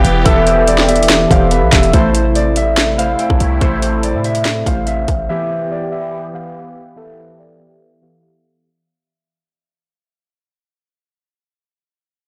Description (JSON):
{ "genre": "hip hop, trap", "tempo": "143 BPM", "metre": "4/4", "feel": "half-time", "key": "E phrygian", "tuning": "A4 = 443 Hz", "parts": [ { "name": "concert harp", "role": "melody", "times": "0.0-9.9 s", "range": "A4 to G5", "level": "-20 LUFS", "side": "equal", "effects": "low-pass filter, tape echo" }, { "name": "soft octave-layered synth lead", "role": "second line", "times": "0.0-1.9 s", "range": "B4 to G5", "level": "-24 LUFS", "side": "equal", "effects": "chorus, tape echo" }, { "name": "warbly lo-fi synth keys", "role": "accompaniment", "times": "0.0-8.7 s", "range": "E3 to C5", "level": "-22 LUFS", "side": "equal", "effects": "chorus, low-pass filter" }, { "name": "sweeping resonant pad", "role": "sustained chords", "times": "0.0-8.6 s", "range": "C3 to G4", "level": "-24 LUFS", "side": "equal", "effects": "chorus, low-pass filter" }, { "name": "warm 808-style bass", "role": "bass", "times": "0.0-5.3 s", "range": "E1 to A2", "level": "-20 LUFS", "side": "equal", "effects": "none" }, { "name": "trap drum kit", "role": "drums", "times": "0.0-5.2 s", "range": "handclaps, hi-hat, kick drum, snare drum", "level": "-17 LUFS", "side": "equal", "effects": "none" } ], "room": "light reverb", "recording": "blown-out, overdriven recording, overdrive", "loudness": "-14 LUFS", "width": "mono", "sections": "0.0-1.9 A section; 1.9-8.6 B section", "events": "fade-out 1.9-8.6; filter sweep 1.9-8.6", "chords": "0.0 Em; 1.9 Am; 5.3 Em" }